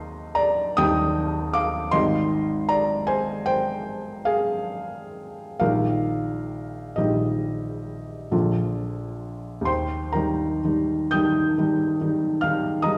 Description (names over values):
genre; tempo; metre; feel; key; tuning
classical, romantic nocturne for solo piano; 40-53 BPM (dotted quarters); 9/8; rubato; Eb major; A4 = 441 Hz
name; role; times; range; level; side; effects
felt-muted upright piano; solo; 0.0-13.0 s; Ab1 to G6; -24 LUFS; equal; none
room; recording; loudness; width
wet recital hall reverb, RT60 1.6 s; heard from further back in the room; -24 LUFS; mono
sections
0.0-9.7 A section; 9.7-13.0 B section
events
none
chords
0.0 Eb; 1.9 Abmaj7; 5.6 Eb/Bb; 8.3 Bb; 9.7 Eb